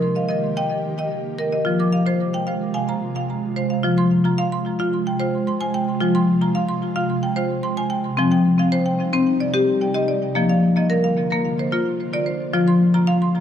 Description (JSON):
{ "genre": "world meditative, meditative tuned percussion", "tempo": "110 BPM", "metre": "4/4", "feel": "straight", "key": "F dorian", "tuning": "A4 = 442 Hz", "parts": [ { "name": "ethereal airy pad", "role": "sustained chords", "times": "0.0-13.4 s", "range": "C3 to G4", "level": "-25 LUFS", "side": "right 4 dB", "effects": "ensemble chorus, built-in reverb" }, { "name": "marimba with hard mallets", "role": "arpeggios", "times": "0.0-13.4 s", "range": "F3 to D6", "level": "-19 LUFS", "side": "left 1 dB", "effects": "tape echo" } ], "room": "wet recital hall reverb, RT60 1.4 s, studio ambience", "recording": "dark, warm production", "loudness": "-18 LUFS", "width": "side -9 dB against mid", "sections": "0.0-3.8 A section; 3.8-13.4 B section", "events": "none", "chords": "0.0 Eb; 1.7 Fm; 8.2 Cm; 10.4 Bb; 12.5 Fm", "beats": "0.02 0.56 1.11 | 1.65 2.20 2.74 3.29 | 3.83 4.38 4.92 5.47 | 6.01 6.56 7.10 7.64 | 8.19 8.73 9.27 9.82 | 10.36 10.90 11.44 11.99 | 12.53 13.07" }